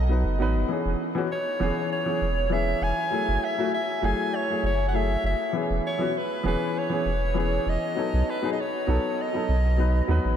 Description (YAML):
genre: sunset chillout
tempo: 99 BPM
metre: 4/4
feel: straight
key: E major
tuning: A4 = 444 Hz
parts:
  - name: clear soprano saxophone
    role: melody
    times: 0.0-10.1 s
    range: B4 to G#5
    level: -28 LUFS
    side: equal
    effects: analog delay
  - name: warm sub bass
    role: bass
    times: 0.0-10.3 s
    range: E1 to D#2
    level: -24 LUFS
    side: equal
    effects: none
  - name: warm baby grand piano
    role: accompaniment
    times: 0.1-10.4 s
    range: E3 to B4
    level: -27 LUFS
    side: left 1 dB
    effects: auto-pan, analog delay
room: moderate huge ambient reverb, RT60 8.4 s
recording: dreamy mix soaked in reverb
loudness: -23 LUFS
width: side -9 dB against mid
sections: 0.0-10.4 A section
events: none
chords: 0.0 B7; 0.7 E6; 3.1 F#m9; 5.5 E6; 8.0 B7